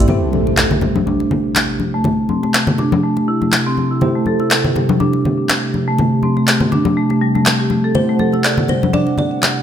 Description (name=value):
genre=afro house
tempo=122 BPM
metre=4/4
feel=swing 55% on 16ths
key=A dorian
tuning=A4 = 440 Hz
part: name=marimba with medium hard mallets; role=arpeggios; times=0.0-9.0 s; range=G3 to A4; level=-18 LUFS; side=equal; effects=low-pass filter, ping-pong delay
part: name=tine electric piano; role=stabs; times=0.0-9.6 s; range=A3 to C5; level=-25 LUFS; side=right 1 dB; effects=overdrive, fast stereo tremolo, low-pass filter, ping-pong delay
part: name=warm analog pad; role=sustained chords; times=0.1-9.6 s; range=C3 to F#5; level=-21 LUFS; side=right 2 dB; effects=chorus
part: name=congas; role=percussion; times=0.1-9.5 s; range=none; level=-19 LUFS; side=left 3 dB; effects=none
part: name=impact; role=sound effects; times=0.1-2.1 s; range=none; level=-22 LUFS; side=equal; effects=none
part: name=electronic finger snaps and handclaps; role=drums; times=0.6-9.5 s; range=none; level=-17 LUFS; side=equal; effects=none
part: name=kalimba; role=melody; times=8.0-9.6 s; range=C5 to D5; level=-23 LUFS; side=left 1 dB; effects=ping-pong delay
room=light reverb, studio reverb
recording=none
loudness=-13 LUFS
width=side -9 dB against mid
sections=0.1-9.6 A section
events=impact 0.1-2.1; filter sweep on marimba 0.1-9.6; filter sweep on analog synth pad 0.1-9.6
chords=0.1 Am7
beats=| 0.09 0.58 1.07 1.56 | 2.05 2.54 3.04 3.53 | 4.02 4.51 5.00 5.49 | 5.99 6.48 6.97 7.46 | 7.95 8.45 8.94 9.43